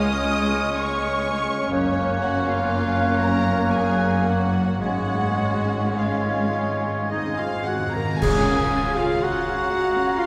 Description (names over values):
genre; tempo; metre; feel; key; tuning
classical, slow romantic movement for symphony orchestra; 51-66 BPM; 3/4; rubato; Db major; A4 = 440 Hz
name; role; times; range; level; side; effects
dark studio violin section; melody; 0.0-10.3 s; Db5 to Eb6; -33 LUFS; equal; none
clear clarinet; second line; 0.0-10.3 s; Db4 to Bb4; -32 LUFS; equal; none
mellow concert flute; second line; 0.0-10.3 s; Bb5 to Ab6; -35 LUFS; equal; none
rich studio violin section; second line; 0.0-10.3 s; Db4 to Bb5; -34 LUFS; equal; none
warm oboe; second line; 0.0-10.3 s; Db5 to Bb5; -32 LUFS; equal; none
warm bassoon; accompaniment; 0.0-7.8 s; Ab3 to Bb3; -32 LUFS; equal; none
warm studio viola section; accompaniment; 0.0-10.3 s; Ab3 to Ab4; -31 LUFS; equal; none
mellow French horn section; sustained chords; 0.0-10.3 s; Ab3 to Bb4; -33 LUFS; equal; none
clear studio double bass section; bass; 0.0-9.1 s; Gb1 to Db2; -33 LUFS; equal; none
warm studio cello section; bass; 0.0-9.1 s; Db2 to Db3; -30 LUFS; equal; none
timpani; percussion; 0.0-0.3, 7.1-9.7 s; Ab2 to Db3; -33 LUFS; equal; none
cymbal swell, clash cymbals and concert bass drum; percussion; 4.8-10.1 s; none; -33 LUFS; equal; none
room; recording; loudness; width
wet cathedral reverb, RT60 4.8 s; recorded in a church or concert hall; -22 LUFS; mono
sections
0.0-8.2 A section; 8.2-10.3 B section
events
timpani fill 7.1-8.2; band accent 8.2-9.2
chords
0.0 Db; 1.7 Gb; 4.8 Db/Ab; 7.1 Ab; 8.2 Db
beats
0.79 | 1.73 2.70 3.72 | 4.82 5.97 7.12 | 8.22 9.23 10.19